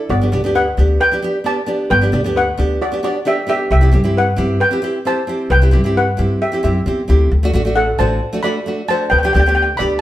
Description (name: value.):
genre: calypso.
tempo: 133 BPM.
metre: 4/4.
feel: straight.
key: G major.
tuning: A4 = 439 Hz.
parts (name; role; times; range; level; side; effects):
steel pan; melody; 0.0-10.0 s; F#4 to B5; -17 LUFS; left 1 dB; none.
nylon-string guitar; accompaniment; 0.0-10.0 s; A3 to A4; -20 LUFS; right 1 dB; none.
upright bass; bass; 0.1-10.0 s; G1 to G2; -15 LUFS; equal; none.
room: moderate stone room reverb, RT60 1.0 s.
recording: band playing live in one room.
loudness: -13 LUFS.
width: side -14 dB against mid.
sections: 0.1-10.0 A section.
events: none.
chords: 0.1 Gmaj7; 3.7 Cmaj7; 7.3 D; 9.1 G/D.